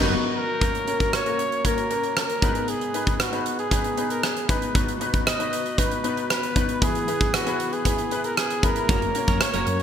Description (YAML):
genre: 1980s-style pop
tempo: 116 BPM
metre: 4/4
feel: straight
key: F# mixolydian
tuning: A4 = 440 Hz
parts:
  - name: warm flugelhorn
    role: melody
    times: 0.0-9.8 s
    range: F#4 to D#5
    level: -27 LUFS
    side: right 1 dB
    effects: none
  - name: clear concert grand piano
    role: accompaniment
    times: 0.0-9.8 s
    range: G#2 to B4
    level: -27 LUFS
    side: left 3 dB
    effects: analog chorus
  - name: string machine, violas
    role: sustained chords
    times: 0.0-0.6 s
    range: D#3 to F#4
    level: -40 LUFS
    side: right 1 dB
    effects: none
  - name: twelve-string electric guitar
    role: riff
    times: 0.0-0.1, 8.9-9.8 s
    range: F#3 to A#4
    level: -31 LUFS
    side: right 5 dB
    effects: lush chorus, ping-pong delay
  - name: woody fretless electric bass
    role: bass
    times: 0.0-0.1, 8.9-9.8 s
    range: F#1 to F#2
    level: -27 LUFS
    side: equal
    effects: none
  - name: huge arena drum kit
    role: drums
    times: 0.6-9.8 s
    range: hi-hat, kick drum, rim click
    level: -24 LUFS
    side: right 1 dB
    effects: gated reverb
room: moderate plate reverb, RT60 2.0 s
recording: bright 1980s-style digital production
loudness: -21 LUFS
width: side -8 dB against mid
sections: 0.6-9.8 A section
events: band accent 0.0-0.6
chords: 0.0 Bmaj7/F#; 0.6 F#; 2.4 G#m; 4.8 B; 6.8 E; 8.9 F#